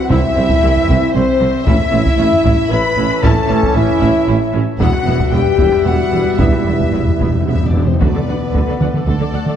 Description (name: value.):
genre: cinematic, epic orchestral film score.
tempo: 114 BPM.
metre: 3/4.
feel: straight.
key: E minor.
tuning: A4 = 441 Hz.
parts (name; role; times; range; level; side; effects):
rich symphonic violin section; melody; 0.0-9.6 s; A4 to B5; -26 LUFS; left 4 dB; none.
concert flute; second line; 0.0-7.5 s; C5 to B5; -23 LUFS; left 2 dB; none.
warm symphonic violin section; second line; 0.0-9.6 s; A4 to B5; -25 LUFS; left 5 dB; none.
bright trombone section; sustained chords; 0.0-8.2 s; E3 to C#4; -24 LUFS; right 5 dB; none.
clear woodwind section; sustained chords; 0.0-9.6 s; G3 to E5; -29 LUFS; left 1 dB; none.
mellow French horn section; sustained chords; 0.0-9.6 s; A3 to B4; -18 LUFS; left 4 dB; none.
warm symphonic viola section; accompaniment; 0.1-9.5 s; B3 to F#5; -26 LUFS; right 1 dB; none.
clear symphonic double bass section; bass; 0.1-9.4 s; E1 to D2; -21 LUFS; right 3 dB; none.
mellow tuba; bass; 0.1-9.4 s; E1 to D2; -23 LUFS; right 3 dB; none.
warm symphonic cello section; bass; 0.1-9.5 s; C2 to D3; -22 LUFS; right 3 dB; none.
taiko ensemble; drums; 0.1-9.6 s; none; -18 LUFS; equal; none.
timpani; percussion; 4.8-8.0 s; E2; -20 LUFS; equal; none.
room: moderate scoring stage reverb, RT60 1.8 s.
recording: dark, warm production.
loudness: -12 LUFS.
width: side -9 dB against mid.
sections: 0.0-8.0 A section; 8.0-9.6 B section.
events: timpani fill 4.8-8.0.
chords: 0.0 C; 1.7 A; 4.8 Emadd9; 8.0 D.